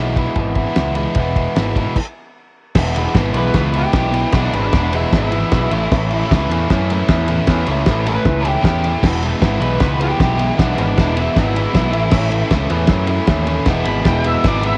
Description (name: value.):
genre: garage rock duo or trio.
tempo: 154 BPM.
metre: 4/4.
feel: straight.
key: E major.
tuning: A4 = 440 Hz.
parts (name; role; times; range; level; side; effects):
biting overdriven guitar; riff; 0.0-14.8 s; E2 to E4; -22 LUFS; equal; cassette tape.
growling picked electric bass; bass; 0.0-14.7 s; E1 to F#2; -22 LUFS; equal; overdrive.
cloth-damped thuddy drum kit; drums; 0.2-14.7 s; crash cymbal, kick drum, ride cymbal, snare drum; -21 LUFS; equal; cassette tape.
octave-fuzz lead guitar; melody; 3.4-14.8 s; D4 to B5; -25 LUFS; equal; distortion, cassette tape.
room: light reverb.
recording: home recording on cassette.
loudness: -17 LUFS.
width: mono.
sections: 0.0-2.8 A section; 2.8-14.8 B section.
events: stop 2.0-2.8.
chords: 0.0 E; 5.7 A; 9.0 E; 11.9 A; 13.7 E.